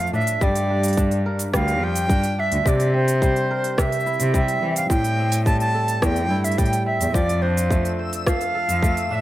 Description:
folktronica; 107 BPM; 4/4; straight; F major; A4 = 440 Hz
bright reedy wooden flute; melody; 0.0-9.2 s; C5 to A5; -24 LUFS; equal; plate reverb, tape echo
kora; arpeggios; 0.0-9.2 s; A2 to C5; -26 LUFS; equal; plate reverb, tape echo
dark cello; bass; 0.0-9.2 s; D2 to E3; -23 LUFS; equal
organic electronic drum kit; drums; 0.0-9.1 s; hi-hat, rim click, shaker; -29 LUFS; right 1 dB
electronic kick drum; drums; 0.4-8.9 s; -22 LUFS; equal
backwards swelling texture; texture; 7.8-9.2 s; E6; -35 LUFS; left 6 dB; built-in reverb
light reverb; -18 LUFS; side -14 dB against mid
0.0-9.2 A section
0.4 Gm7; 2.7 C7; 4.9 Am7; 7.1 F6

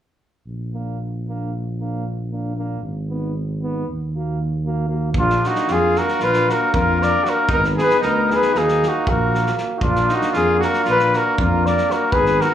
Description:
balkan folk, Balkan brass band; 232 BPM (eighths); 9/8; straight; Bb phrygian dominant; A4 = 440 Hz
dark tuba; bass; 0.5-12.4 s; Ab1 to F2; -23 LUFS; equal
bright trombone; accompaniment; 0.7-12.5 s; Bb3 to Cb4; -28 LUFS; right 6 dB; slapback echo
warm euphonium; accompaniment; 0.7-12.5 s; D4 to Gb4; -31 LUFS; left 6 dB; slapback echo
loose indie drum kit; percussion; 5.1-12.5 s; kick drum, snare drum; -26 LUFS; equal
mellow cornet; melody; 5.2-12.5 s; F4 to D5; -18 LUFS; left 2 dB; slapback echo
clear trumpet; second line; 5.2-12.5 s; D4 to Bb4; -23 LUFS; right 2 dB; slapback echo
moderate club ambience, RT60 0.5 s; live gig heard through the venue's PA, club reverb; -17 LUFS; side -10 dB against mid
0.5-5.2 A section; 5.2-12.5 B section
0.5 Bb; 2.8 Abm; 3.9 Ebm; 5.2 Bb; 7.5 Abm; 8.5 Ebm; 9.8 Bb

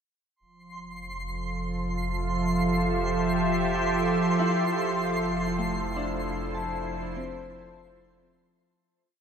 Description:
ambient; free time; F major; A4 = 440 Hz
evolving wavetable pad; sustained chords; 1.4-8.8 s; F3 to E5; -27 LUFS; right 2 dB; chorus, built-in reverb
round analog bass; bass; 0.4-8.8 s; F1; -36 LUFS; equal; tube saturation
bowed-like drone; drone; 1.3-8.9 s; F3; -40 LUFS; right 1 dB
twinkling granular texture; texture; 0.7-8.8 s; C6; -33 LUFS; equal; built-in reverb
Celtic harp; arpeggios; 3.7-9.2 s; A3 to A5; -35 LUFS; left 3 dB; ping-pong delay
wet shimmer reverb, RT60 6.8 s; -25 LUFS; side -7 dB against mid
0.4-8.8 A section
fade-out 4.6-8.8
0.4 Fmaj9; 4.6 Am/F

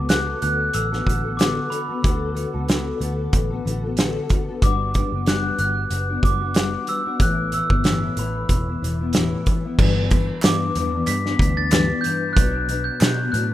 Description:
indie pop, bedroom pop; 93 BPM; 4/4; swing 55% on 16ths; A4 = 440 Hz
glockenspiel with rubber mallets; melody; 0.0-13.5 s; B5 to B6; -26 LUFS; equal; wide subtle chorus, slapback echo
fingerpicked steel-string acoustic guitar; accompaniment; 0.0-13.5 s; G2 to A4; -26 LUFS; left 4 dB; ensemble chorus, vibrato effect
vintage muted picked electric bass; bass; 0.0-13.5 s; E1 to B2; -25 LUFS; equal
loose indie drum kit; drums; 0.1-13.5 s; crash cymbal, hi-hat, kick drum, snare drum; -20 LUFS; right 1 dB
group handclap; percussion; 10.4-13.2 s; -31 LUFS; right 2 dB
small room ambience; rough home demo mix; -18 LUFS; side -14 dB against mid
0.0-9.8 A section; 9.8-13.5 B section
0.0 D6; 4.6 Gmaj7; 7.2 Asus2; 9.8 G6; 12.4 Bm

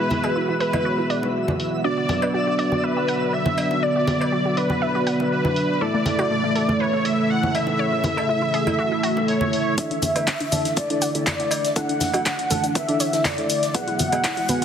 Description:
progressive house; 121 BPM; 4/4; straight; A4 = 439 Hz
wide unison lead; melody; 0.0-14.6 s; B4 to F#5; -24 LUFS; left 1 dB; lush chorus, tape echo
warm analog pad; sustained chords; 0.0-14.6 s; C#3 to F#4; -28 LUFS; left 1 dB; chorus, sidechain pumping
wide unison pluck; arpeggios; 0.0-14.6 s; A3 to F#5; -29 LUFS; moving between left 4 dB and right 4 dB; auto-pan, sidechain pumping, tape echo
chorused polysynth; stabs; 0.0-14.6 s; A3 to A5; -25 LUFS; right 2 dB; sidechain pumping, tape echo
twinkling granular texture; texture; 0.0-9.8 s; E5; -38 LUFS; equal; built-in reverb, sidechain pumping
big-room dance drum kit; drums; 0.1-14.6 s; cabasa, handclaps, hi-hat; -27 LUFS; left 1 dB; low-pass filter on hats, low-pass filter on perc, low-pass filter on snare
bongos, congas and cowbell; percussion; 0.1-14.6 s; -28 LUFS; equal; sidechain pumping on perc
airy dreamy lead; second line; 9.8-14.6 s; D5 to F#5; -29 LUFS; left 2 dB; chorus, sidechain pumping, tape echo
electronic kick drum; drums; 9.8-14.3 s; -26 LUFS; equal; high-pass filter on kick, high-pass filter on room
swinging big-band drum kit; drums; 9.8-14.6 s; hi-hat, snare drum; -37 LUFS; left 2 dB
light reverb, digital ambience; heavily compressed radio sound, multiband compression; -19 LUFS; side -8 dB against mid
0.0-9.8 A section; 9.8-14.6 B section
filter sweep on synth pluck 0.0-9.8, 9.8-14.6; filter sweep on analog polysynth 0.0-9.8, 9.8-14.6; build-up 9.8-14.6; filter sweep on digital synth lead 9.8-14.6
0.0 Eadd9; 1.8 Bm; 5.8 A; 9.8 Dsus2; 13.7 Eadd9

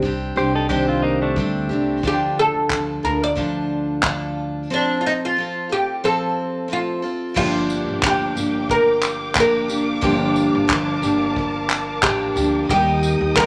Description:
acoustic pop; 90 BPM; 4/4; swing 55% on 16ths; G minor; A4 = 440 Hz
picked steel-string acoustic guitar; accompaniment; 0.0-13.5 s; G2 to A4; -24 LUFS; equal
upright bass; bass; 0.0-13.5 s; G1 to Eb2; -31 LUFS; equal
unplugged drum kit; drums; 0.0-13.5 s; crash cymbal, handclaps, kick drum, tambourine; -25 LUFS; equal
direct-recorded clean electric guitar; second line; 0.4-2.0 s; A3 to C5; -26 LUFS; equal
oud; melody; 2.1-13.5 s; D4 to D5; -23 LUFS; equal
warm studio string section; sustained chords; 7.4-13.5 s; Bb4 to Eb6; -30 LUFS; equal
light reverb; -20 LUFS; mono
0.0-7.4 A section; 7.4-13.5 B section
0.0 Cmadd9; 2.0 Dm; 4.7 F; 7.4 Gm7; 12.7 Eb

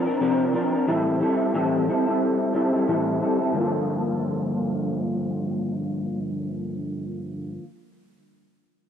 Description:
indie pop; 90 BPM; 4/4; swing 55% on 16ths; G dorian; A4 = 440 Hz
electric guitar through a small old amp; accompaniment; 0.0-7.7 s; G2 to Bb4; -22 LUFS; equal; ensemble chorus, vibrato effect, low-pass filter, cassette tape
moderate lush hall reverb, RT60 2.6 s; home recording on cassette; -22 LUFS; side -8 dB against mid
0.0-3.5 A section; 3.5-6.2 B section
filter sweep on clean electric guitar 0.0-3.5
0.0 C9sus4; 0.9 Am7; 3.5 Gm9

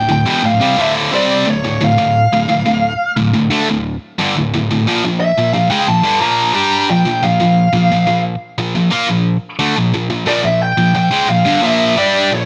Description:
metal; 88 BPM; 4/4; straight; A4 = 440 Hz
bluesy overdriven lead guitar; melody; 0.0-12.5 s; C#5 to Bb5; -18 LUFS; equal; distortion
high-gain distorted guitar; riff; 0.0-12.5 s; D2 to G4; -16 LUFS; equal; distortion
light reverb, digital ambience; -14 LUFS; mono
0.0-12.5 A section
0.0 Dm; 4.9 Bb5

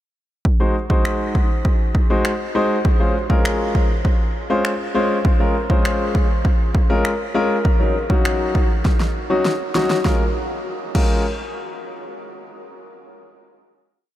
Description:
dance-pop; 100 BPM; 4/4; straight; Bb minor; A4 = 441 Hz
deep house drum kit; drums; 0.5-11.1 s; crash cymbal, finger snaps, kick drum, snare drum; -18 LUFS; equal; overdrive
clear concert grand piano; accompaniment; 0.6-11.2 s; Gb3 to C5; -21 LUFS; left 1 dB; sidechain pumping
moderate huge ambient reverb, RT60 8.8 s; dreamy mix soaked in reverb; -16 LUFS; side -13 dB against mid
0.5-10.1 verse; 10.1-12.5 final chord
drum fill 8.9-10.1
0.5 Ab7; 2.9 Dbmaj7; 7.7 Ebm7; 10.1 Bbm7

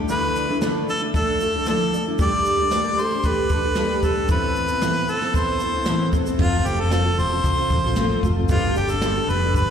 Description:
acoustic pop; 114 BPM; 4/4; straight; G mixolydian; A4 = 442 Hz
fingerpicked steel-string acoustic guitar; accompaniment; 0.0-9.7 s; A2 to A4; -23 LUFS; equal; double-tracked left and right
clear harmonica; melody; 0.1-9.7 s; F4 to D5; -23 LUFS; equal; slapback echo, tape echo
jazz brush drum kit; drums; 0.1-9.7 s; crash cymbal, kick drum, shaker, snare drum; -25 LUFS; equal
hollow-body short-scale fingered electric bass; bass; 6.4-9.7 s; E1 to C2; -23 LUFS; equal
little or no reverb; live gig heard through the venue's PA, recital hall reverb; -18 LUFS; side -8 dB against mid
0.0-6.4 A section; 6.4-9.7 B section
0.0 Dmadd9; 2.2 Gsus2; 4.3 Amadd9; 6.4 F; 8.5 Gadd9

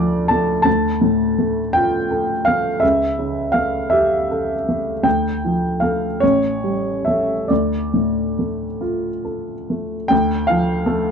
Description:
classical, romantic character piece for solo piano; 45-57 BPM (dotted quarters); 6/8; rubato; D minor; A4 = 441 Hz
clear baby grand piano; solo; 0.0-11.1 s; A1 to A5; -16 LUFS; equal
light reverb; dark, warm production; -16 LUFS; side -6 dB against mid
0.0-10.1 A section
0.0 Dm; 2.8 A7/C#; 5.1 Dm; 6.2 A7; 7.5 Dm

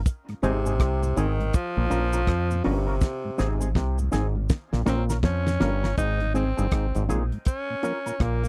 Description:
roots reggae; 81 BPM; 4/4; swing 62% on 16ths; A4 = 440 Hz
deep dub fingered electric bass; bass; 0.0-8.5 s; G1 to F2; -28 LUFS; equal
damped 70s drum kit; drums; 0.1-8.5 s; hi-hat, kick drum, rim click, snare drum; -26 LUFS; equal
cabasa; percussion; 0.1-8.5 s; -46 LUFS; equal
mellow tonewheel organ; accompaniment; 0.3-8.5 s; Ab2 to Db4; -34 LUFS; equal; slow rotary speaker
raspy tenor saxophone; melody; 0.4-8.5 s; C3 to Eb4; -32 LUFS; equal
electric guitar with an envelope filter; accompaniment; 0.4-8.1 s; C4 to Bb4; -33 LUFS; equal; lush chorus
overdriven clav; riff; 0.4-8.4 s; G2 to F3; -34 LUFS; equal
little or no reverb; dry, close 1970s-style studio recording; -25 LUFS; mono
0.0-6.0 A section; 6.0-8.5 B section
drum fill 3.0-6.0
0.1 Ab; 1.5 Bbm; 3.0 Ab; 4.5 Bbm; 6.0 Ab; 7.5 Bbm

